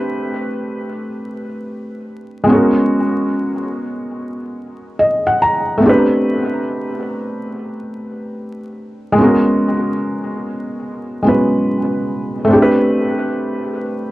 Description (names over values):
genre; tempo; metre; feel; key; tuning
hip hop; 72 BPM; 4/4; swing 62% on 16ths; unclear; A4 = 439 Hz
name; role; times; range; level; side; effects
felt-muted upright piano; solo; 0.0-14.1 s; G#3 to A#5; -15 LUFS; equal; cassette tape, low-pass filter, tape echo
room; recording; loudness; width
moderate studio reverb, RT60 0.6 s; dark, warm production, vinyl crackle; -14 LUFS; side -17 dB against mid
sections
0.0-14.1 A section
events
none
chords
0.0 Am11; 2.5 G#m11; 5.8 Am11; 9.2 G#m11; 12.5 Am11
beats
0.83 1.66 | 2.49 3.33 4.16 4.99 | 5.83 6.66 7.49 8.33 | 9.16 9.99 10.83 11.66 | 12.49 13.33